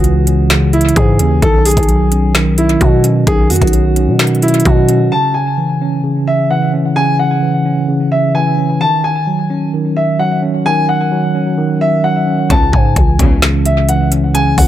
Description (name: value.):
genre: hip hop, trap.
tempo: 130 BPM.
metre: 4/4.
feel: half-time.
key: C# minor.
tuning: A4 = 440 Hz.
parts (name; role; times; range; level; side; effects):
dark concert grand piano; melody; 0.0-14.7 s; E4 to A5; -16 LUFS; equal; tape echo.
mellow tine electric piano; accompaniment; 0.0-14.7 s; C#3 to C#4; -14 LUFS; right 1 dB; medium stereo tremolo, tape echo.
growling 808-style bass; bass; 0.0-5.1, 12.5-14.7 s; B1 to B2; -14 LUFS; equal; none.
trap drum kit; drums; 0.0-5.0, 12.5-14.7 s; finger snaps, hi-hat, kick drum, snare drum; -14 LUFS; equal; none.
warm studio string section; stabs; 12.5-13.6 s; E2 to C#3; -20 LUFS; left 3 dB; none.
room: little or no reverb.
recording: echo-heavy mix.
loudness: -10 LUFS.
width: side -12 dB against mid.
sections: 0.0-5.1 A section; 5.1-14.7 B section.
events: none.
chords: 0.0 C#m; 1.4 Badd9; 5.1 C#m; 8.8 D#m7; 12.5 C#m.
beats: 0.04 0.50 0.96 | 1.42 1.89 2.35 2.81 | 3.27 3.73 4.19 4.66 | 5.12 5.58 6.04 6.50 | 6.96 7.42 7.89 8.35 | 8.81 9.27 9.73 10.19 | 10.65 11.12 11.58 12.04 | 12.50 12.96 13.42 13.89 | 14.35.